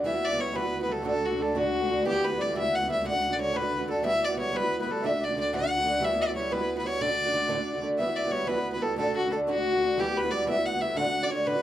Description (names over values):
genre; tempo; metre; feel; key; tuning
celtic folk, Celtic jig; 121 BPM (dotted quarters); 6/8; straight; unclear; A4 = 441 Hz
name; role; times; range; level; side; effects
picked acoustic archtop guitar; accompaniment; 0.0-11.6 s; D2 to F#4; -30 LUFS; right 2 dB; none
warm studio string section; drone; 0.0-11.6 s; D2; -39 LUFS; equal; none
dark fiddle; melody; 0.1-11.6 s; F#4 to F#5; -27 LUFS; left 1 dB; none
mellow accordion; second line; 0.1-11.6 s; F#4 to F#5; -35 LUFS; equal; none
room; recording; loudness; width
moderate small room reverb, RT60 0.5 s; none; -25 LUFS; side -12 dB against mid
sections
0.1-8.0 A section; 8.0-11.6 A section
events
none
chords
0.1 Emadd9; 1.1 D; 2.0 Emadd9; 3.0 D; 4.0 Emadd9; 5.0 D; 6.0 Emadd9; 7.0 D; 8.0 Emadd9; 9.0 D; 10.0 Emadd9; 11.0 D